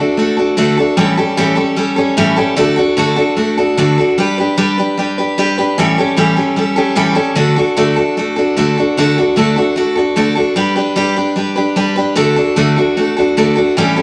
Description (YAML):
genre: rock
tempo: 150 BPM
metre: 4/4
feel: straight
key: D major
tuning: A4 = 440 Hz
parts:
  - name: picked steel-string acoustic guitar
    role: solo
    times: 0.0-14.0 s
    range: A2 to B4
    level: -14 LUFS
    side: equal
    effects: none
room: wet large studio reverb, RT60 1.3 s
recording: none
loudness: -14 LUFS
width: mono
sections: 0.0-9.0 A section; 9.0-14.0 A section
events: none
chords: 0.0 D; 1.0 A7; 2.6 D; 4.2 G; 5.8 A7; 7.4 D; 10.6 G; 12.2 D